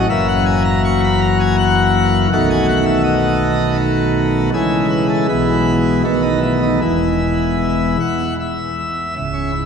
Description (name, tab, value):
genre	classical, chorale-style piece for pipe organ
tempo	76-82 BPM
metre	3/4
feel	straight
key	E major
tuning	A4 = 440 Hz
part	pipe organ, plenum	solo	0.0-9.7 s	C#1 to C#6	-14 LUFS	equal	none
room	wet cathedral reverb, RT60 4.8 s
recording	none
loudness	-14 LUFS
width	side -6 dB against mid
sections	0.0-9.2 A section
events	none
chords	0.1 F#7; 2.3 B7; 4.5 C#m; 5.3 E/B; 6.0 B7; 6.8 E